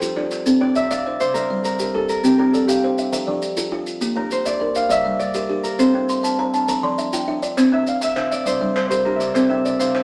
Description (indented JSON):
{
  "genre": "southern african traditional, mbira-style interlocking cycle",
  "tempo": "135 BPM (dotted quarters)",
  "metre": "12/8",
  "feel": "straight",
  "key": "C mixolydian",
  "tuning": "A4 = 438 Hz",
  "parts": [
    { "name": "Celtic harp", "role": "melody", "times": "0.0-10.0 s", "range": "G4 to F5", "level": "-24 LUFS", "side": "equal", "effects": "none" },
    { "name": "buzzing kalimba", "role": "arpeggios", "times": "0.0-10.0 s", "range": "F3 to G5", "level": "-24 LUFS", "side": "equal", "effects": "none" },
    { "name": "kalimba", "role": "arpeggios", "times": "0.0-10.0 s", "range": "F3 to C6", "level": "-27 LUFS", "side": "equal", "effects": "none" },
    { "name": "maracas", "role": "percussion", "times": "0.0-9.9 s", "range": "none", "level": "-34 LUFS", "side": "equal", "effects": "none" },
    { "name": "group handclap", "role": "percussion", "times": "0.2-0.4, 7.6-10.0 s", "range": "none", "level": "-35 LUFS", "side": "equal", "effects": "none" }
  ],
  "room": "wet studio reverb, RT60 0.8 s",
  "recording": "none",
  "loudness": "-20 LUFS",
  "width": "mono",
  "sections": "0.5-10.0 A section",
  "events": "kalimba fill 5.9-7.6",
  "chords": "0.5 C; 1.3 Gm; 2.2 C; 3.1 F; 4.0 Bb; 4.9 Gm; 5.8 C; 6.7 F5; 7.6 C; 8.5 Gm; 9.4 C",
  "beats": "0.02 | 0.46 0.90 1.35 1.79 | 2.24 2.68 3.12 3.57 | 4.01 4.46 4.90 5.35 | 5.79 6.24 6.68 7.13 | 7.57 8.02 8.46 8.91 | 9.36 9.80"
}